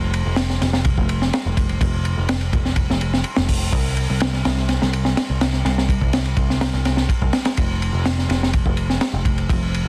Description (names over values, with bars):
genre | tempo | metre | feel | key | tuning
breakbeat, breaks | 125 BPM | 4/4 | straight | unclear | A4 = 440 Hz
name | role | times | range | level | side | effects
overdriven picked electric bass | bass | 0.0-9.9 s | F1 to C2 | -23 LUFS | equal | none
crunchy breakbeat drum kit | drums | 0.1-9.9 s | hi-hat, kick drum, ride cymbal, snare drum | -22 LUFS | equal | none
room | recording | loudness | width
moderate studio ambience, RT60 0.5 s | dense, heavily limited modern master, vinyl crackle | -20 LUFS | mono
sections
0.0-9.9 A section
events
none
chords
none